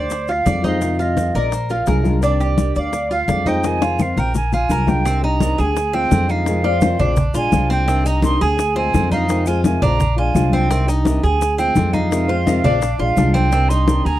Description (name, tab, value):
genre	latin, Cuban son and guajira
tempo	170 BPM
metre	4/4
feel	straight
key	C minor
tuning	A4 = 440 Hz
part	silver concert flute	melody	0.0-14.2 s	C5 to C6	-22 LUFS	right 3 dB	none
part	fingerpicked old ladder-braced acoustic guitar	accompaniment	0.0-14.2 s	C3 to G4	-23 LUFS	left 2 dB	none
part	Cuban tres	arpeggios	0.0-14.2 s	C4 to D5	-23 LUFS	right 1 dB	none
part	upright bass	bass	0.0-14.2 s	Bb1 to F2	-20 LUFS	equal	none
part	bongos	percussion	0.1-14.2 s	none	-23 LUFS	left 5 dB	none
part	congas	percussion	0.1-14.2 s	none	-22 LUFS	left 1 dB	none
part	maracas	percussion	0.1-14.2 s	none	-37 LUFS	left 8 dB	none
part	flamenco guitar	second line	1.4-2.1, 6.6-7.2, 12.3-12.9 s	Ab4 to Eb5	-25 LUFS	left 6 dB	none
room	light reverb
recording	dry, close 1970s-style studio recording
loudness	-15 LUFS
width	side -14 dB against mid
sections	0.0-5.1 A section; 5.1-14.2 B section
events	drum fill 3.6-5.1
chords	0.1 Dm7b5; 0.8 Fm7; 1.5 Bb7; 2.2 Cmadd9; 2.9 Dm7b5; 3.6 Fm7; 4.4 Bb7; 5.1 Cmadd9; 5.8 Dm7b5; 6.5 Fm7; 7.2 Bb7; 7.9 Cmadd9; 8.6 Dm7b5; 9.3 Fm7; 10.0 Bb7; 10.7 Cmadd9; 11.4 Dm7b5; 12.1 Fm7; 12.8 Bb7; 13.5 Cmadd9